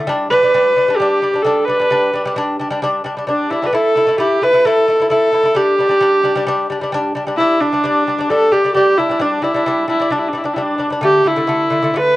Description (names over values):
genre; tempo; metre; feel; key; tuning
mongolian traditional, Mongolian folk; 132 BPM; 4/4; straight; G gong mode; A4 = 440 Hz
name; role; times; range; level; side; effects
lute; arpeggios; 0.0-12.1 s; D3 to E4; -19 LUFS; left 1 dB; cassette tape, plate reverb
warm viola; melody; 0.3-12.2 s; D4 to B4; -14 LUFS; equal; cassette tape, plate reverb
room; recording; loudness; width
moderate studio ambience, RT60 0.5 s; home recording on cassette; -13 LUFS; side -17 dB against mid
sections
0.0-7.4 A section; 7.4-12.2 B section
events
none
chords
0.1 G5; 3.7 A5; 5.6 G5; 11.0 D5